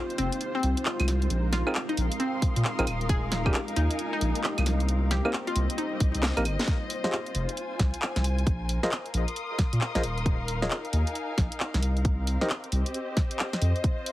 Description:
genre	UK garage, two-step garage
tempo	134 BPM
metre	4/4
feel	swing 63% on 16ths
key	F minor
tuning	A4 = 440 Hz
part	hollow square pluck	melody	0.0-6.0 s	C4 to Ab4	-32 LUFS	left 1 dB	analog chorus, ping-pong delay
part	ethereal airy pad	sustained chords	0.0-6.7 s	G3 to G4	-38 LUFS	equal	ensemble chorus, built-in reverb, tremolo, sidechain pumping
part	muted studio string section	texture	0.0-14.1 s	C4 to Eb6	-35 LUFS	left 1 dB	sidechain pumping
part	garage drum kit	drums	0.1-14.1 s	claves, handclaps, hi-hat, snare drum	-31 LUFS	equal	none
part	saturated sub bass	bass	0.2-13.7 s	Eb1 to Bb2	-27 LUFS	equal	sidechain pumping
part	overdriven tine electric piano	stabs	1.7-12.5 s	Bb3 to Eb5	-32 LUFS	equal	fast tremolo, low-pass filter, ping-pong delay
part	electronic kick drum	drums	2.4-14.0 s	none	-26 LUFS	equal	none
room	light reverb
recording	heavily compressed radio sound, multiband compression, vinyl crackle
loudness	-25 LUFS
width	side -15 dB against mid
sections	0.0-6.7 A section; 6.7-14.1 B section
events	drop 0.0-6.7; kick drops out 6.2-6.7; drum fill 6.2-6.7; band accent 6.6; filter sweep on tine electric piano 6.7-14.1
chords	0.0 Fm9; 1.3 Bb9sus4; 2.9 Eb9sus4; 4.7 Cm7; 6.7 Fm7; 8.5 Bb9sus4; 10.0 Ebsus4; 11.8 Cm7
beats	0.41 0.85 | 1.30 1.75 2.20 2.65 | 3.09 3.54 3.99 4.44 | 4.88 5.33 5.78 6.23 | 6.67 7.12 7.57 8.02 | 8.47 8.91 9.36 9.81 | 10.26 10.71 11.15 11.60 | 12.05 12.50 12.94 13.39 | 13.84

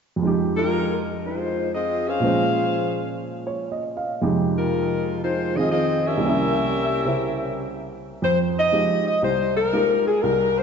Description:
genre	jazz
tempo	120 BPM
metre	4/4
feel	swing 69% on 8ths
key	F minor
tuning	A4 = 441 Hz
part	warm baby grand piano	accompaniment	0.2-10.6 s	C2 to F5	-24 LUFS	right 2 dB	none
part	mellow saxophone section	melody	0.6-10.6 s	Ab3 to F5	-22 LUFS	left 2 dB	none
room	wet concert hall reverb, RT60 2.5 s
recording	dark, warm production, nothing above 7.7 kHz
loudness	-20 LUFS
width	side -6 dB against mid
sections	0.2-8.2 A section; 8.2-10.6 B section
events	none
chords	0.2 Fm7; 2.2 Bbm9; 4.2 Fm7; 6.2 C7b9; 8.2 Fm9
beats	| 0.21 0.71 1.21 1.71 | 2.21 2.71 3.21 3.72 | 4.22 4.72 5.22 5.72 | 6.22 6.72 7.22 7.72 | 8.22 8.72 9.22 9.72 | 10.22

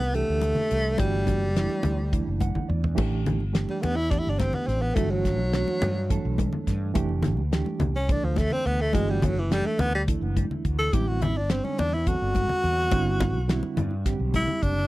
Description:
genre	electric jazz fusion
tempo	211 BPM (eighths)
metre	7/8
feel	straight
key	G major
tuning	A4 = 438 Hz
part	clear tenor saxophone	melody	0.0-14.9 s	E3 to A4	-27 LUFS	equal	none
part	fretless electric bass	bass	0.0-14.9 s	F1 to G2	-27 LUFS	equal	analog chorus
part	congas	percussion	0.0-14.6 s	none	-30 LUFS	left 3 dB	none
part	bright reed electric piano	accompaniment	0.1-14.9 s	D3 to F#5	-31 LUFS	right 6 dB	fast tremolo
part	damped 70s drum kit	drums	0.1-14.8 s	crash cymbal, hi-hat, kick drum, snare drum, toms	-27 LUFS	equal	none
room	little or no reverb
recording	dry, close 1970s-style studio recording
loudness	-23 LUFS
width	side -17 dB against mid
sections	0.0-3.0 A section; 3.0-14.9 B section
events	reed electric piano fill 2.1-3.0; drum fill 2.6-3.0; tenor saxophone solo 3.0-14.9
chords	0.0 F69 (rootless); 1.0 Gsus2; 3.0 A5; 5.0 Gmaj13; 7.0 F69; 8.9 Gsus2; 10.9 Am7; 12.9 Cmaj9/G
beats	0.14 0.42 0.71 | 0.99 1.28 1.56 1.84 2.13 2.41 2.69 | 2.98 3.26 3.55 3.83 4.11 4.40 4.68 | 4.97 5.25 5.53 5.82 6.10 6.38 6.67 | 6.95 7.24 7.52 7.81 8.09 8.37 8.66 | 8.94 9.23 9.51 9.80 10.08 10.36 10.65 | 10.93 11.22 11.50 11.79 12.07 12.35 12.64 | 12.92 13.21 13.49 13.77 14.06 14.34 14.62

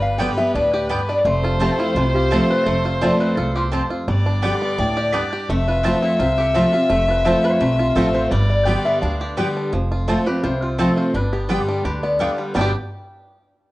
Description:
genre	bluegrass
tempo	170 BPM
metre	4/4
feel	straight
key	G mixolydian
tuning	A4 = 440 Hz
part	bluegrass banjo	melody	0.0-12.8 s	D3 to G4	-28 LUFS	right 2 dB	plate reverb
part	lap resonator guitar	melody	0.0-12.7 s	E4 to G5	-24 LUFS	left 1 dB	plate reverb
part	clear fiddle	second line	0.0-9.6 s	B4 to E5	-23 LUFS	left 2 dB	none
part	picked steel-string acoustic guitar	accompaniment	0.0-12.7 s	E2 to G4	-21 LUFS	equal	none
part	upright bass	bass	0.0-12.7 s	F1 to D2	-23 LUFS	equal	none
part	mandolin	stabs	0.2-12.7 s	B3 to A5	-26 LUFS	right 1 dB	none
room	wet small room reverb, RT60 0.6 s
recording	worn, warbling old tape, cassette tape, warbly pitch drift, nothing above 10.7 kHz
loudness	-17 LUFS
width	side -18 dB against mid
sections	0.0-9.7 A section; 9.7-12.6 B section; 12.6-13.7 C section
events	none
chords	0.0 G; 1.3 F; 4.1 G; 5.5 F; 8.3 G; 9.7 F; 11.1 G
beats	0.20 0.55 0.90 | 1.25 1.61 1.96 2.31 | 2.67 3.02 3.37 3.73 | 4.08 4.43 4.79 5.14 | 5.49 5.84 6.20 6.55 | 6.90 7.26 7.61 7.96 | 8.32 8.67 9.02 9.38 | 9.73 10.08 10.44 10.79 | 11.14 11.49 11.85 12.20 | 12.55

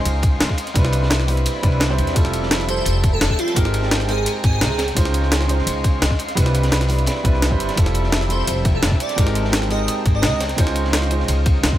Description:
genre	liquid drum and bass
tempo	171 BPM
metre	4/4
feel	straight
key	unclear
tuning	A4 = 439 Hz
part	dark baby grand piano	accompaniment	0.0-11.8 s	G3 to G5	-24 LUFS	right 2 dB	tape echo
part	ethereal airy pad	sustained chords	0.0-11.8 s	D5 to C6	-29 LUFS	left 1 dB	ensemble chorus, built-in reverb, sidechain pumping
part	upright bass	bass	0.0-11.7 s	F1 to E2	-20 LUFS	equal	none
part	crunchy breakbeat drum kit	drums	0.1-11.8 s	ride cymbal, snare drum	-29 LUFS	equal	high-pass filter on cymbals, high-pass filter on snare, high-pass filter on room
part	jungle sampler-style drum kit	drums	0.1-11.7 s	hi-hat, snare drum	-22 LUFS	equal	none
part	electronic kick drum	drums	0.2-11.8 s	none	-18 LUFS	equal	none
part	airy dreamy lead	melody	2.7-4.8, 8.3-10.4 s	F4 to Eb5	-25 LUFS	right 1 dB	chorus, digital delay
room	studio reverb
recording	none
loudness	-16 LUFS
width	side -13 dB against mid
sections	0.0-11.8 A section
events	none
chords	0.0 Dbmaj9; 0.6 Cmaj9; 2.2 Fmaj9; 3.6 Abmaj9; 4.8 Dbmaj9; 6.2 Cmaj9; 7.8 Fmaj9; 9.2 Abmaj9; 10.4 Dbmaj9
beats	0.06 0.41 | 0.76 1.11 1.46 1.81 | 2.16 2.51 2.86 3.21 | 3.56 3.92 4.27 4.62 | 4.97 5.32 5.67 6.02 | 6.37 6.72 7.07 7.42 | 7.77 8.12 8.48 8.83 | 9.18 9.53 9.88 10.23 | 10.58 10.93 11.28 11.63

